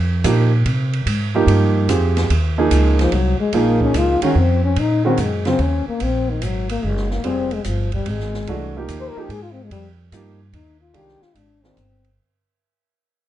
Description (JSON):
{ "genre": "modal jazz", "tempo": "146 BPM", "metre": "3/4", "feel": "swing 67% on 8ths", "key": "unclear", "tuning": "A4 = 440 Hz", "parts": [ { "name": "upright bass", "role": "bass", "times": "0.0-12.2 s", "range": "F1 to C3", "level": "-19 LUFS", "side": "right 1 dB", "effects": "none" }, { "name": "warm baby grand piano", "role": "accompaniment", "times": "0.2-11.8 s", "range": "Db3 to Ab4", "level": "-20 LUFS", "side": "right 4 dB", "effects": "none" }, { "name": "open jazz drum kit", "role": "drums", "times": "0.2-12.1 s", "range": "hi-hat, kick drum, ride cymbal, snare drum", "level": "-29 LUFS", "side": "right 3 dB", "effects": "none" }, { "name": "mellow trombone", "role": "second line", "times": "3.0-12.1 s", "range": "Eb3 to C5", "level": "-22 LUFS", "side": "left 5 dB", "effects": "none" } ], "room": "moderate large studio reverb, RT60 1.0 s", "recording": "dark, warm production, nothing above 10.7 kHz", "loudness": "-16 LUFS", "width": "side -12 dB against mid", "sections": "0.0-2.3 A section; 2.3-12.2 B section", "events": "fade-out 2.3-12.2; trombone solo 2.3-12.2", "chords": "0.0 Fm11; 2.3 Ebm11; 7.2 Fm11" }